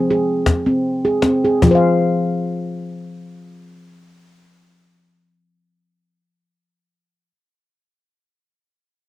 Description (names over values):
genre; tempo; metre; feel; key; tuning
world meditative, meditative tuned percussion; 73 BPM; 3/4; swing 55% on 16ths; F minor; A4 = 440 Hz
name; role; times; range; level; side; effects
handpan; arpeggios; 0.0-6.7 s; F3 to F5; -16 LUFS; equal; cassette tape
cajon; percussion; 0.5-2.0 s; none; -17 LUFS; left 2 dB; none
room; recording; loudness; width
moderate booth ambience, RT60 0.2 s; home recording on cassette; -15 LUFS; side -16 dB against mid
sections
0.0-1.6 A section; 1.6-6.6 B section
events
slowing down 0.0-1.6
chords
0.0 Fm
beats
0.11 0.84 | 1.63 2.45 3.28 | 4.10 4.92 5.74